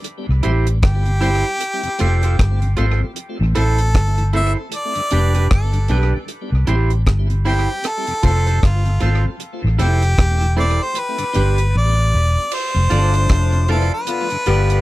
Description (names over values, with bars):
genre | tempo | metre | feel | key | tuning
roots reggae | 77 BPM | 4/4 | swing 59% on 16ths | unclear | A4 = 438 Hz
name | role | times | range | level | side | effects
deep reggae drum kit | drums | 0.0-14.8 s | crash cymbal, hi-hat, kick drum, rim click | -21 LUFS | equal | tape echo
tonewheel organ | accompaniment | 0.3-14.6 s | F2 to F4 | -29 LUFS | left 2 dB | slow rotary speaker, tape echo
vintage muted fingered electric bass | bass | 0.3-14.8 s | E1 to C2 | -16 LUFS | equal | none
electric guitar at the edge of break-up | accompaniment | 0.4-14.8 s | D4 to D5 | -25 LUFS | right 4 dB | tape echo
clear harmonica | melody | 0.8-14.8 s | F4 to E5 | -23 LUFS | equal | tape echo
mellow horn section | second line | 12.9-14.8 s | A2 to G4 | -23 LUFS | left 5 dB | tape echo
room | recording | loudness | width
little or no reverb | dry, close 1970s-style studio recording | -15 LUFS | side -18 dB against mid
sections
0.0-12.5 A section; 12.5-14.8 B section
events
drums muted 11.7-12.5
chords
0.0 C; 1.6 F; 3.2 Am; 4.7 G; 6.3 C; 7.8 F; 9.4 Am; 11.0 G; 12.5 F6; 14.1 G7